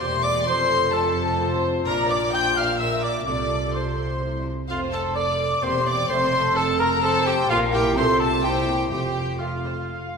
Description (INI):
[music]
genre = quick classical-period movement for symphony orchestra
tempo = 128 BPM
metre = 3/4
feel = straight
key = F major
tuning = A4 = 440 Hz
[part]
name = dark chamber violin section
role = melody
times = 0.0-10.1 s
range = F5 to G6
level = -28 LUFS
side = left 4 dB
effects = none
[part]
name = mellow clarinet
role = second line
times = 0.0-10.1 s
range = F4 to G5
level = -30 LUFS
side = left 1 dB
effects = none
[part]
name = mellow silver concert flute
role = second line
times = 0.0-10.1 s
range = F5 to G6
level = -28 LUFS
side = left 2 dB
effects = none
[part]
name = rich studio violin section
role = second line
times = 0.0-10.1 s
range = F4 to G5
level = -31 LUFS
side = equal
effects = none
[part]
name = warm cor anglais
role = second line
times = 0.0-10.1 s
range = F4 to G5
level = -29 LUFS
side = right 1 dB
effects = none
[part]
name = warm studio viola section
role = accompaniment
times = 0.0-10.2 s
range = G4 to F5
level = -29 LUFS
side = right 2 dB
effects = none
[part]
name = mellow French horn section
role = sustained chords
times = 0.0-10.1 s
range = G3 to G4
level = -30 LUFS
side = left 4 dB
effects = none
[part]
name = warm studio cello section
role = bass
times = 0.0-10.2 s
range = E2 to C3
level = -30 LUFS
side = right 3 dB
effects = none
[part]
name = warm studio double bass section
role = bass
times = 0.0-10.2 s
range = E1 to C2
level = -30 LUFS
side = right 2 dB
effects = none
[sound]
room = wet scoring stage reverb, RT60 1.9 s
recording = minimal, uncompressed stereo recording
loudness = -20 LUFS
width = side -5 dB against mid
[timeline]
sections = 0.0-10.2 A section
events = none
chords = 0.0 C7/E; 0.5 F; 1.9 Bb; 3.3 F/C; 4.2 C; 4.7 F; 5.6 C7/E; 6.1 F; 7.5 Bb; 8.0 F/C; 8.4 C7; 8.9 F